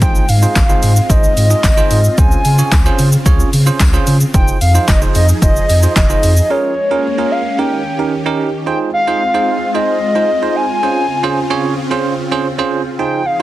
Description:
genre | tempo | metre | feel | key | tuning
dance-pop | 111 BPM | 4/4 | straight | Ab major | A4 = 442 Hz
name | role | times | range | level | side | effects
hollow clarinet-like synth lead | melody | 0.0-13.4 s | Db5 to Ab5 | -17 LUFS | left 1 dB | chorus, digital delay
barky tine electric piano | accompaniment | 0.0-13.4 s | Db4 to Eb5 | -19 LUFS | right 5 dB | sidechain pumping
supersaw pad | sustained chords | 0.0-13.4 s | Db3 to Ab4 | -22 LUFS | equal | sidechain pumping
warm sub bass | bass | 0.0-6.4 s | F1 to Db3 | -12 LUFS | equal | sidechain pumping
deep house drum kit | drums | 0.0-6.5 s | handclaps, hi-hat, kick drum, shaker, snare drum | -13 LUFS | equal | overdrive
tambourine | percussion | 0.6-6.1 s | none | -30 LUFS | left 9 dB | none
room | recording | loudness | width
digital ambience | dense, heavily limited modern master | -11 LUFS | side -15 dB against mid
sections
0.0-8.7 A section; 8.7-13.4 A section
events
break 6.5-8.7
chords
0.0 Ab6; 2.2 Dbmaj7; 4.3 Fm7; 6.5 Bbm7; 7.6 Eb7; 8.7 Ab6; 10.8 Dbmaj7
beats
| 0.02 0.56 1.10 1.64 | 2.18 2.72 3.26 3.80 | 4.34 4.88 5.42 5.96 | 6.50 7.04 7.59 8.13 | 8.67 9.21 9.75 10.29 | 10.83 11.37 11.91 12.45 | 12.99

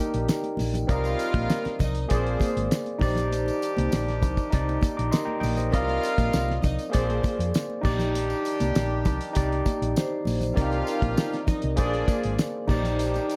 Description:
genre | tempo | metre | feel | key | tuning
lush 1970s-style soul | 99 BPM | 4/4 | straight | Eb major | A4 = 438 Hz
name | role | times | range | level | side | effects
overdriven tine electric piano | accompaniment | 0.0-13.4 s | Bb3 to D6 | -31 LUFS | equal | none
warm horn section | stabs | 0.0-13.4 s | Eb3 to Bb4 | -36 LUFS | equal | none
vibraphone with medium hard mallets | texture | 0.0-6.0, 10.0-13.4 s | G4 to G5 | -40 LUFS | equal | none
hollow-body short-scale fingered electric bass | bass | 0.1-13.2 s | Ab1 to F2 | -30 LUFS | equal | none
cloth-damped thuddy drum kit | drums | 0.1-13.4 s | crash cymbal, hi-hat, kick drum, snare drum | -29 LUFS | equal | none
congas | percussion | 0.3-13.3 s | none | -38 LUFS | equal | none
tambourine | percussion | 0.3-13.4 s | none | -48 LUFS | equal | none
warm studio violin section | second line | 0.9-12.4 s | C4 to F5 | -35 LUFS | equal | none
room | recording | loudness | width
light reverb | dark, warm production | -25 LUFS | mono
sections
0.0-13.4 A section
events
tine electric piano fill 4.8-5.7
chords
0.0 Ebmaj7/Bb; 0.9 Cm9; 2.1 Bb9; 3.0 Ebmaj7/Bb; 6.9 Bb9; 7.8 Ebmaj7/Bb; 11.8 Bb9; 12.7 Ebmaj7/Bb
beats
0.29 | 0.89 1.50 2.10 2.71 | 3.31 3.91 4.52 5.12 | 5.73 6.33 6.94 7.54 | 8.15 8.75 9.36 9.96 | 10.57 11.18 11.78 12.39 | 12.99

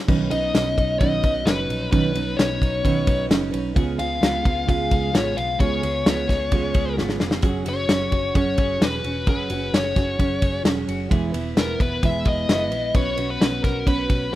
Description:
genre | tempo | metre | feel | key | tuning
jangly indie pop | 131 BPM | 4/4 | straight | B major | A4 = 441 Hz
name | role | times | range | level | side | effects
fingerpicked steel-string acoustic guitar | accompaniment | 0.1-14.4 s | B2 to B4 | -25 LUFS | right 5 dB | none
twelve-string electric guitar | arpeggios | 0.1-14.4 s | B2 to B4 | -33 LUFS | left 6 dB | harmonic tremolo
vintage muted picked electric bass | bass | 0.1-14.4 s | E1 to C#2 | -29 LUFS | equal | none
loose indie drum kit | drums | 0.1-14.4 s | crash cymbal, hi-hat, kick drum, ride cymbal, snare drum | -21 LUFS | left 1 dB | none
dark smooth lead guitar | melody | 0.3-14.4 s | A#4 to E#5 | -25 LUFS | left 3 dB | overdrive
room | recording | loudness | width
studio ambience | rough home demo mix | -19 LUFS | side -15 dB against mid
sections
0.1-14.4 A section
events
drum fill 7.0-7.4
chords
0.1 Badd9; 3.8 C#7; 7.4 F#sus2; 11.1 E; 12.9 Bsus2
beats
| 0.08 0.54 1.00 1.46 | 1.92 2.38 2.84 3.30 | 3.76 4.22 4.68 5.14 | 5.60 6.06 6.52 6.98 | 7.44 7.90 8.36 8.81 | 9.27 9.73 10.19 10.65 | 11.11 11.57 12.03 12.49 | 12.95 13.41 13.87 14.33

